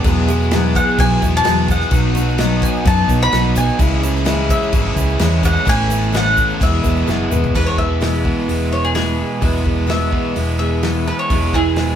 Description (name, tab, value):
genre	folk rock and heartland rock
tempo	128 BPM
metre	4/4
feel	straight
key	E major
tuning	A4 = 435 Hz
part	picked steel-string acoustic guitar	accompaniment	0.0-12.0 s	E2 to G#4	-21 LUFS	left 2 dB	none
part	accordion	sustained chords	0.0-12.0 s	G#3 to A4	-32 LUFS	right 3 dB	none
part	overdriven electric guitar	riff	0.0-12.0 s	E2 to G#4	-22 LUFS	right 1 dB	none
part	hollow-body short-scale fingered electric bass	bass	0.0-12.0 s	E1 to F#2	-19 LUFS	equal	none
part	natural country drum kit	drums	0.0-11.9 s	crash cymbal, hi-hat, kick drum, snare drum, toms	-20 LUFS	equal	none
part	egg shaker	percussion	0.1-7.5 s	none	-35 LUFS	right 8 dB	none
part	bowl-back mandolin	melody	0.8-12.0 s	E4 to B5	-20 LUFS	equal	none
room	moderate studio reverb, RT60 0.8 s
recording	band playing live in one room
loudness	-14 LUFS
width	side -9 dB against mid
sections	0.0-7.5 A section; 7.5-12.0 B section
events	drum fill 7.1-7.5; mandolin solo 7.5-12.0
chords	0.0 Eadd9; 1.9 B; 3.8 C#m; 5.7 Aadd9; 6.6 E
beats	| 0.04 0.51 0.98 1.45 | 1.92 2.39 2.86 3.33 | 3.79 4.26 4.73 5.20 | 5.67 6.14 6.61 7.08 | 7.54 8.01 8.48 8.95 | 9.42 9.89 10.36 10.83 | 11.30 11.77